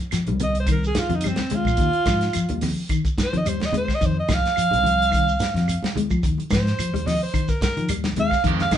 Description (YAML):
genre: afrobeat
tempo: 108 BPM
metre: 4/4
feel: swing 54% on 16ths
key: unclear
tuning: A4 = 440 Hz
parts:
  - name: clean electric guitar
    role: arpeggios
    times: 0.0-8.8 s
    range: Eb3 to Ab3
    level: -26 LUFS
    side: left 4 dB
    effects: tremolo
  - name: shekere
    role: percussion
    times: 0.0-8.8 s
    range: none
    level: -32 LUFS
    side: right 2 dB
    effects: none
  - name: fingered electric bass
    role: bass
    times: 0.1-8.8 s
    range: Bb1 to F3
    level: -25 LUFS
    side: equal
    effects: none
  - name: warm soul drum kit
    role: drums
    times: 0.1-8.8 s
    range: hi-hat, kick drum, snare drum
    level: -26 LUFS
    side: equal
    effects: none
  - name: claves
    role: percussion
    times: 0.1-8.8 s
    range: none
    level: -35 LUFS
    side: right 4 dB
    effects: none
  - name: congas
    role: percussion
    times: 0.3-8.8 s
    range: none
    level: -30 LUFS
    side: right 2 dB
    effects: none
  - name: breathy alto saxophone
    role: melody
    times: 0.4-8.8 s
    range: C4 to F5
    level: -23 LUFS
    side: right 2 dB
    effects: none
  - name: electric guitar at the edge of break-up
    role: stabs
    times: 8.5-8.8 s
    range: Eb3 to G4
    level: -26 LUFS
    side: right 5 dB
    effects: none
room: wet small room reverb, RT60 0.5 s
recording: band playing live in one room, nothing above 10.6 kHz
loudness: -19 LUFS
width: side -10 dB against mid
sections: 0.0-8.8 A section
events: alto saxophone solo 0.0-8.8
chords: 0.0 Fsus2; 1.8 Ebsus24; 4.0 F7(no3); 6.2 Ebsus24